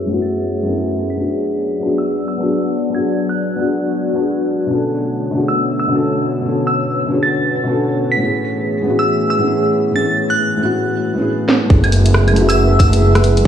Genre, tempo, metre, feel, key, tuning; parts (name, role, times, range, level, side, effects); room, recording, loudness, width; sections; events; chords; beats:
future garage; 137 BPM; 4/4; swing 60% on 16ths; F# minor; A4 = 440 Hz
felt-muted upright piano; accompaniment; 0.0-13.5 s; F#2 to A4; -18 LUFS; left 2 dB; vintage 12-bit sampler grit, sidechain pumping, tape echo
warbly tape-like pad; sustained chords; 0.0-13.5 s; D3 to E5; -20 LUFS; equal; chorus, built-in reverb, sidechain pumping
glassy synth bell; melody; 0.2-13.0 s; E6 to B6; -22 LUFS; right 1 dB; chorus, tape echo
garage drum kit; drums; 11.5-13.4 s; claves, hi-hat, rim click, snare drum; -19 LUFS; right 2 dB; low-pass filter on hats, low-pass filter on perc, low-pass filter on snare
swelling detuned saw bass; bass; 11.7-13.5 s; F#1; -12 LUFS; equal; tube saturation, sidechain pumping
electronic kick drum; drums; 11.7-13.5 s; -10 LUFS; equal
light reverb; played on a big sound system in a bare room, stone room reverb, low-pass filter; -14 LUFS; side -9 dB against mid
0.0-11.7 A section; 11.7-13.5 B section
filter sweep 0.0-11.7; drum fill 11.5
0.0 F#m11; 1.2 G#m7b5; 4.7 Bm9; 8.2 Amaj7; 11.7 F#m11
0.32 0.76 | 1.19 1.63 2.07 2.51 | 2.94 3.38 3.82 4.26 | 4.70 5.13 5.57 6.01 | 6.45 6.89 7.32 7.76 | 8.20 8.64 9.08 9.51 | 9.95 10.39 10.83 11.27 | 11.70 12.14 12.58 13.02 | 13.46